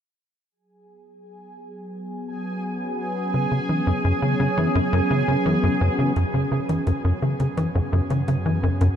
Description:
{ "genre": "ambient, sequencer-driven space music", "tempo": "85 BPM", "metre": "4/4", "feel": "straight", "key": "unclear", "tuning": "A4 = 440 Hz", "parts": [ { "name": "sweeping resonant pad", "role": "sustained chords", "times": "0.5-9.0 s", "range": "F#3 to C#4", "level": "-27 LUFS", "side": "equal", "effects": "chorus, shimmer reverb" }, { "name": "bubbling stepped-filter texture", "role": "texture", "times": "1.5-9.0 s", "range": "G#4 to G#5", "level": "-29 LUFS", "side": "right 2 dB", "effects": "chorus, built-in reverb, shimmer reverb" }, { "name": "tight sequencer bass", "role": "riff", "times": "3.3-8.9 s", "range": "F#2 to E3", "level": "-21 LUFS", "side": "equal", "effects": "wide subtle chorus, ping-pong delay" }, { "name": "analog drone", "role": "bass", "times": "7.7-9.0 s", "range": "F#2", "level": "-29 LUFS", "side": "equal", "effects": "chorus" }, { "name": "electronic hi-hat and bongos", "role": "percussion", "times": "6.2-9.0 s", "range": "none", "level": "-50 LUFS", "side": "right 1 dB", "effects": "ping-pong delay" } ], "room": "moderate huge ambient reverb, RT60 7.6 s", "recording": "none", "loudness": "-20 LUFS", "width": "side -9 dB against mid", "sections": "0.5-6.2 A section; 6.2-9.0 B section", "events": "fade-in on synth texture 0.5-6.2; filter sweep on analog synth pad 0.5-6.2", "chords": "0.5 F#sus4" }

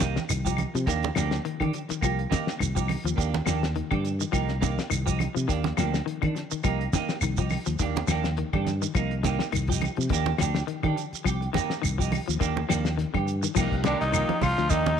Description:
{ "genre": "afrobeat", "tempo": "104 BPM", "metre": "4/4", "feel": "swing 55% on 16ths", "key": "C minor", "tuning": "A4 = 440 Hz", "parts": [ { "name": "clean electric guitar", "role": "arpeggios", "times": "0.0-14.9 s", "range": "D3 to F3", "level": "-32 LUFS", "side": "left 12 dB", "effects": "wide subtle chorus, tape echo" }, { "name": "semi-hollow electric guitar", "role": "stabs", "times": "0.0-14.9 s", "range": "Bb3 to G4", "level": "-32 LUFS", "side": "right 12 dB", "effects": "wide subtle chorus" }, { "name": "fingered electric bass", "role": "bass", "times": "0.0-15.0 s", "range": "C2 to Eb3", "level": "-28 LUFS", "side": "equal", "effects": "none" }, { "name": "cloth-damped thuddy drum kit", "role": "drums", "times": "0.0-15.0 s", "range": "crash cymbal, hi-hat, kick drum, snare drum", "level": "-31 LUFS", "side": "left 3 dB", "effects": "none" }, { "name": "congas", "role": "percussion", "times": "0.0-15.0 s", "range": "none", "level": "-32 LUFS", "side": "right 9 dB", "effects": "none" }, { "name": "shekere", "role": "percussion", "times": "0.0-14.9 s", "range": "none", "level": "-33 LUFS", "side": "right 4 dB", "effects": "none" }, { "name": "claves", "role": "percussion", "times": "0.3-14.6 s", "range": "none", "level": "-36 LUFS", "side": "left 13 dB", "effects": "none" }, { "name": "reed electric piano", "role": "accompaniment", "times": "13.6-15.0 s", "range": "F3 to G4", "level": "-35 LUFS", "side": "left 11 dB", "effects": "overdrive" }, { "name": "raspy baritone saxophone", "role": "second line", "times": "13.8-15.0 s", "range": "D3 to F3", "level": "-35 LUFS", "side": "left 12 dB", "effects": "none" }, { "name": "raspy tenor saxophone", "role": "melody", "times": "13.9-15.0 s", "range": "D4 to F4", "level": "-26 LUFS", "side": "equal", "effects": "none" }, { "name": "clear trumpet", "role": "second line", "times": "13.9-15.0 s", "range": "D5 to F5", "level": "-36 LUFS", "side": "right 10 dB", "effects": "none" } ], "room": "light reverb, studio ambience", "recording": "1960s-style stereo with parts hard left and right", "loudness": "-24 LUFS", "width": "side -8 dB against mid", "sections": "0.0-13.6 A section; 13.6-15.0 B section", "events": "none", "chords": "0.0 Cm7; 0.9 Ebmaj7; 2.0 Cm7; 3.2 Ebmaj7; 4.3 Cm7; 5.5 Ebmaj7; 6.6 Cm7; 7.8 Ebmaj7; 8.9 Cm7; 10.1 Ebmaj7; 11.3 Cm7; 12.4 Ebmaj7; 13.6 Cm7" }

